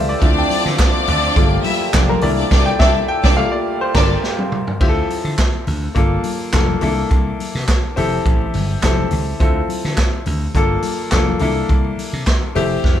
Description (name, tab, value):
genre	disco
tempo	105 BPM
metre	4/4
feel	straight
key	G dorian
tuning	A4 = 440 Hz
part	clear grand piano	accompaniment	0.0-13.0 s	E3 to G5	-21 LUFS	left 3 dB	none
part	warm French horn section	sustained chords	0.0-4.8 s	Bb2 to A4	-24 LUFS	right 1 dB	none
part	slap bass	bass	0.0-12.9 s	F1 to D3	-21 LUFS	equal	tube saturation
part	clear studio string section	second line	0.2-4.1 s	Bb3 to E5	-20 LUFS	equal	none
part	vintage drum kit	drums	0.2-13.0 s	crash cymbal, handclaps, hi-hat, kick drum, snare drum, toms	-18 LUFS	right 1 dB	none
part	congas	percussion	0.5-13.0 s	none	-29 LUFS	left 5 dB	none
part	group handclap	percussion	0.8-12.4 s	none	-32 LUFS	right 5 dB	none
room	light reverb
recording	band playing live in one room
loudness	-14 LUFS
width	side -10 dB against mid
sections	0.0-4.8 A section; 4.8-13.0 B section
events	grand piano solo 0.0-4.8; band accent 2.5-4.8; drum fill 4.2-4.8, 12.8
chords	0.2 Dm7; 1.4 Gm9; 2.2 C13; 3.4 Gm9; 4.8 Dm7; 6.0 Gm9; 6.8 C13; 8.0 Fmaj9; 9.4 Dm7; 10.6 Gm9; 11.4 C13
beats	| 0.22 0.79 1.37 1.94 | 2.51 3.09 3.66 4.23 | 4.81 5.38 5.96 6.53 | 7.11 7.68 8.25 8.83 | 9.40 9.98 10.55 11.12 | 11.70 12.27 12.84